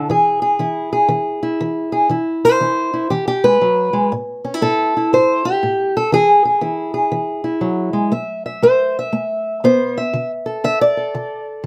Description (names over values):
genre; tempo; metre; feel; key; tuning
acoustic country blues, solo or duo; 119 BPM; 4/4; swing 65% on 8ths; unclear; A4 = 436 Hz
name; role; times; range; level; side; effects
fingerpicked old ladder-braced acoustic guitar; solo; 0.0-11.7 s; A2 to E5; -17 LUFS; equal; none
room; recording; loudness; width
light reverb; close, detailed microphones; -17 LUFS; mono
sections
0.0-8.1 A section; 8.1-11.7 B section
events
steel-string acoustic guitar solo 8.1-11.7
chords
0.1 E; 4.1 A5; 6.1 E; 8.1 A5; 10.1 D5